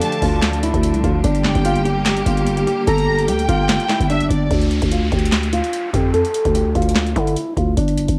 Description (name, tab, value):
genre	hip hop, trap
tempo	147 BPM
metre	4/4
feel	half-time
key	D minor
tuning	A4 = 440 Hz
part	flamenco guitar	melody	0.0-8.2 s	D4 to A4	-24 LUFS	equal	low-pass filter
part	warm studio violin section	second line	0.0-4.5 s	D5 to Bb5	-28 LUFS	equal	analog delay
part	clear symphonic string section	sustained chords	0.0-4.5 s	D3 to G4	-26 LUFS	equal	none
part	booming analog drum machine	drums	0.0-8.2 s	handclaps, hi-hat, kick drum, snare drum	-23 LUFS	equal	cassette tape
part	growling 808-style bass	bass	0.2-8.2 s	G1 to D3	-22 LUFS	equal	none
part	downlifter	sound effects	4.5-7.8 s	none	-34 LUFS	equal	none
room	light reverb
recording	home recording on cassette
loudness	-18 LUFS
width	mono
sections	0.0-4.5 A section; 4.5-8.2 B section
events	none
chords	0.0 Dm; 1.2 Gm; 4.5 Dm